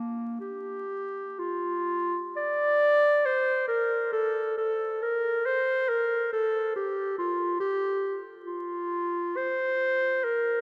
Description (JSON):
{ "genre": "classical, baroque-style fantasia for unaccompanied clarinet", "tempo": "56-72 BPM", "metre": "4/4", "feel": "rubato", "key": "Bb major", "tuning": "A4 = 441 Hz", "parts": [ { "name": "warm clarinet", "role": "solo", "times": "0.0-10.6 s", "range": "Bb3 to D5", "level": "-28 LUFS", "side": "equal", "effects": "none" } ], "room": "wet cathedral reverb, RT60 4.8 s", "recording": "vinyl crackle", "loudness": "-28 LUFS", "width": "mono", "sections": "0.0-1.4 A section; 1.4-10.6 B section", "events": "none", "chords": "none", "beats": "0.41 | 1.40 2.37 3.26 4.13 | 5.02 5.89 6.76 7.61 | 8.46 9.37 10.23" }